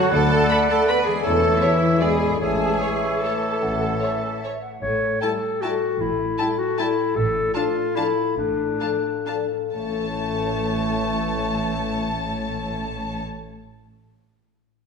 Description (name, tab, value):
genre	classical, orchestral ballroom waltz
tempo	123-173 BPM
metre	3/4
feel	rubato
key	A major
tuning	A4 = 440 Hz
part	bright flute section	second line	0.0-4.8 s	E5 to C#6	-30 LUFS	equal	none
part	rich symphonic violin section	second line	0.0-13.2 s	C#5 to B5	-33 LUFS	equal	none
part	warm clarinet	second line	0.0-13.2 s	A3 to D5	-27 LUFS	equal	none
part	warm oboe	second line	0.0-4.6 s	E5 to F#5	-28 LUFS	right 2 dB	none
part	rich studio viola section	accompaniment	0.0-13.2 s	A3 to B4	-29 LUFS	right 1 dB	none
part	warm bassoon	accompaniment	0.0-4.6 s	D3 to F#3	-27 LUFS	equal	none
part	mellow French horn section	sustained chords	0.0-13.2 s	E3 to E4	-29 LUFS	left 2 dB	none
part	concert harp	arpeggios	0.0-14.1 s	A2 to E5	-27 LUFS	left 8 dB	none
part	rich symphonic cello section	bass	0.0-13.2 s	A2 to B4	-31 LUFS	right 2 dB	none
part	mellow tuba	bass	0.1-4.0 s	E1 to D2	-30 LUFS	right 2 dB	none
part	rich symphonic double bass section	bass	0.1-13.2 s	A1 to E2	-30 LUFS	right 3 dB	none
part	rich chamber violin section	melody	0.5-13.2 s	C#5 to B5	-30 LUFS	left 2 dB	none
room	wet recital hall reverb, RT60 1.4 s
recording	minimal, uncompressed stereo recording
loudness	-20 LUFS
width	side -6 dB against mid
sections	0.0-4.8 A section; 4.8-9.7 B section; 9.7-12.4 C section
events	slowing down 6.6-9.7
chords	0.1 Bm7/D; 1.2 A/E; 2.0 E7; 2.4 A; 4.8 A7; 7.2 Dm/A; 9.7 A